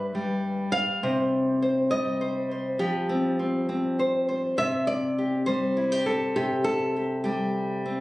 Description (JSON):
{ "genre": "folk, solo fingerstyle acoustic guitar", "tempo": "68 BPM (dotted quarters)", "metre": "6/8", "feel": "straight", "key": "unclear", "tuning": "A4 = 442 Hz", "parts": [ { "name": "nylon-string guitar", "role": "solo", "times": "0.0-8.0 s", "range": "G2 to F5", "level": "-24 LUFS", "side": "equal", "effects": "none" } ], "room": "light reverb", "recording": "recorded on a phone in the room, studio reverb", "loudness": "-24 LUFS", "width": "side -18 dB against mid", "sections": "0.0-4.6 A section; 4.6-8.0 B section", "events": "none", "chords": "0.0 G; 1.0 Cm; 2.8 Fsus2; 4.6 Csus2" }